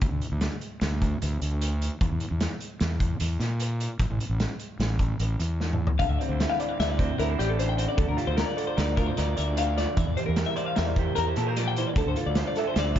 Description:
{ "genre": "math rock and midwest emo", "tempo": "151 BPM", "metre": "5/4", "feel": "straight", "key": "D minor", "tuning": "A4 = 440 Hz", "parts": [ { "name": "fuzz fingered electric bass", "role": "bass", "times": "0.0-13.0 s", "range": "A1 to Bb2", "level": "-27 LUFS", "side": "equal", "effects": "overdrive" }, { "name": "loose indie drum kit", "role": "drums", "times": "0.0-13.0 s", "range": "hi-hat, kick drum, snare drum, toms", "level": "-29 LUFS", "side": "equal", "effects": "none" }, { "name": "electric guitar through a small old amp", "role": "accompaniment", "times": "6.0-13.0 s", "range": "D3 to E5", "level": "-31 LUFS", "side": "right 5 dB", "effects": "none" }, { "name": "twelve-string electric guitar", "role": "arpeggios", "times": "6.0-13.0 s", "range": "G4 to G5", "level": "-30 LUFS", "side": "left 5 dB", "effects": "none" } ], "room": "light reverb", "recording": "nothing above 7.5 kHz", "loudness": "-24 LUFS", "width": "side -10 dB against mid", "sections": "0.0-13.0 A section", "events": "drum fill 5.6-6.0", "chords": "0.0 N.C.; 4.0 A5; 6.0 Dm11; 8.0 Gm7/D (rootless); 10.0 Em7b5; 12.0 Dm9" }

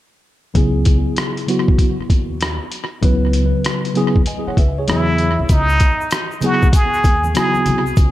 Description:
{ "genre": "hip hop, jazz-hop", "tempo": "97 BPM", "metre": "4/4", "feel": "swing 66% on 16ths", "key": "C# minor", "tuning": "A4 = 440 Hz", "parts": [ { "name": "tine electric piano", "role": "accompaniment", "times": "0.5-7.8 s", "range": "C#3 to G#5", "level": "-20 LUFS", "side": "left 1 dB", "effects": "overdrive, fast stereo tremolo, low-pass filter, tape echo" }, { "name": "upright bass", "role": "bass", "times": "0.6-8.1 s", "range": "B#1 to E2", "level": "-20 LUFS", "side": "equal", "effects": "none" }, { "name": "lo-fi sampler-style drum kit", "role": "drums", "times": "0.6-8.1 s", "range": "hi-hat, kick drum, rim click", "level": "-17 LUFS", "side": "equal", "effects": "tape echo" }, { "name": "trumpet with plunger mute", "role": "melody", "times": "4.9-7.8 s", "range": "D#4 to G#4", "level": "-18 LUFS", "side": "equal", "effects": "tape echo" }, { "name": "egg shaker and congas", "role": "percussion", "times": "5.5-8.1 s", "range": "none", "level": "-32 LUFS", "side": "right 2 dB", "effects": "tape echo" } ], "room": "light reverb", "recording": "echo-heavy mix", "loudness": "-14 LUFS", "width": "side -14 dB against mid", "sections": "0.6-5.5 A section; 5.5-8.1 B section", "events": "filter sweep on tine electric piano 0.6-5.5", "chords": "0.6 C#m11; 4.9 E; 5.5 C#m11" }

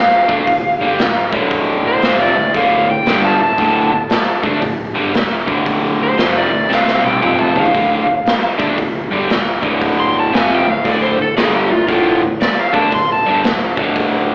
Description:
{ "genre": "blues rock power trio and southern rock", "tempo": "116 BPM", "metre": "4/4", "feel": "swing 64% on 8ths", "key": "D minor", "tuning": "A4 = 440 Hz", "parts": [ { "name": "overdriven slide guitar", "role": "melody", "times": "0.0-13.4 s", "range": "F4 to C6", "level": "-19 LUFS", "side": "equal", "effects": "slapback echo" }, { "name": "crunchy overdriven guitar", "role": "riff", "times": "0.3-14.3 s", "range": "D2 to D4", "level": "-19 LUFS", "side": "equal", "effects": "slapback echo" }, { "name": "vintage muted fingered electric bass", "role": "bass", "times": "0.3-14.3 s", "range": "D1 to D2", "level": "-37 LUFS", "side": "equal", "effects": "none" }, { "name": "raw garage drum kit", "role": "drums", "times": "0.3-14.1 s", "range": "hi-hat, kick drum, snare drum, toms", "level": "-20 LUFS", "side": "equal", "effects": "none" } ], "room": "light reverb", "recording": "live gig heard through the venue's PA, club reverb, AM radio sound", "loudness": "-15 LUFS", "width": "mono", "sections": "0.0-14.3 A section", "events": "drum fill 6.7-7.7", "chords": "0.0 Dm; 6.7 C5; 7.2 Dm" }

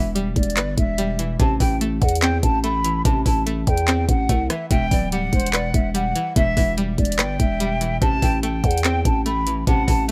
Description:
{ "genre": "hip hop, trap", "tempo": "145 BPM", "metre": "4/4", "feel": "half-time", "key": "E minor", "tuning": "A4 = 440 Hz", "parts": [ { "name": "breathy concert flute", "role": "melody", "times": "0.0-10.0 s", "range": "C5 to B5", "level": "-28 LUFS", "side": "equal", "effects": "low-pass filter" }, { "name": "string-like resonator pluck", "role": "accompaniment", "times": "0.0-10.1 s", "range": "B2 to B4", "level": "-30 LUFS", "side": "equal", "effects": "chorus, low-pass filter" }, { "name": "growling 808-style bass", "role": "bass", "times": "0.0-10.1 s", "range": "D1 to E2", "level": "-25 LUFS", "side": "equal", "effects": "none" }, { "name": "trap drum kit", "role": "drums", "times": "0.2-10.1 s", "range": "handclaps, hi-hat, kick drum, rim click", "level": "-23 LUFS", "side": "equal", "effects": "none" }, { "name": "silver concert flute", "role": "second line", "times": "4.7-10.1 s", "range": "E5 to A5", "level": "-30 LUFS", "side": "equal", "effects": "tape echo" } ], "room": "little or no reverb", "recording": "none", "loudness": "-20 LUFS", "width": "mono", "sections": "0.0-10.1 A section", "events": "none", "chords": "0.0 Em; 1.4 Am; 4.7 Em; 8.0 Am" }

